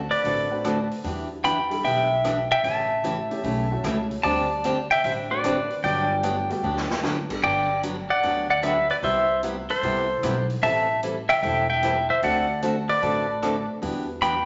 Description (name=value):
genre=country, western swing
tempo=150 BPM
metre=4/4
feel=swing 67% on 8ths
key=G major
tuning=A4 = 440 Hz
part: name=upright bass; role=bass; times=0.0-14.5 s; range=E1 to E2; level=-36 LUFS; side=equal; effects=none
part: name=pedal steel guitar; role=melody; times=0.1-14.5 s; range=A4 to B5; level=-25 LUFS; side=equal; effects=none
part: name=swinging big-band drum kit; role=drums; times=0.1-14.3 s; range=crash cymbal, hi-hat, kick drum, rim click, snare drum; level=-40 LUFS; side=equal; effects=none
part: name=picked steel-string acoustic guitar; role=accompaniment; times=0.2-14.3 s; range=C3 to A4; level=-31 LUFS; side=equal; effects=none
part: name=clear upright piano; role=accompaniment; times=0.5-7.4, 13.8-14.4 s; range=G3 to A4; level=-37 LUFS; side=equal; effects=none
room=wet large studio reverb, RT60 1.3 s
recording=nothing above 7.7 kHz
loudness=-24 LUFS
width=mono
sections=0.0-7.4 A section; 7.4-14.5 A section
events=drum fill 6.6-7.0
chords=0.0 D7; 1.0 Em9; 2.6 A7; 4.2 D7sus4; 5.8 Gmaj9; 7.4 Gmaj7; 9.0 Cmaj7; 10.6 Am7; 12.2 D7; 13.8 Em9